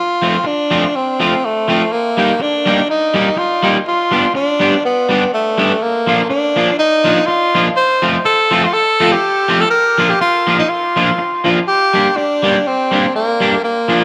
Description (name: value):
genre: ska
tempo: 123 BPM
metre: 4/4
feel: swing 54% on 8ths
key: unclear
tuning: A4 = 440 Hz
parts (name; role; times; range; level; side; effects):
- breathy tenor saxophone; melody; 0.0-14.0 s; A3 to C5; -16 LUFS; equal; dub echo
- electric guitar at the edge of break-up; accompaniment; 0.2-14.0 s; F3 to G4; -18 LUFS; equal; lush chorus
room: moderate studio reverb, RT60 0.7 s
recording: none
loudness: -14 LUFS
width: mono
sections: 0.0-14.0 A section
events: none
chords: 0.0 F; 1.9 Eb; 3.9 G; 5.8 Bb; 7.8 F; 9.7 Bb; 11.7 Gm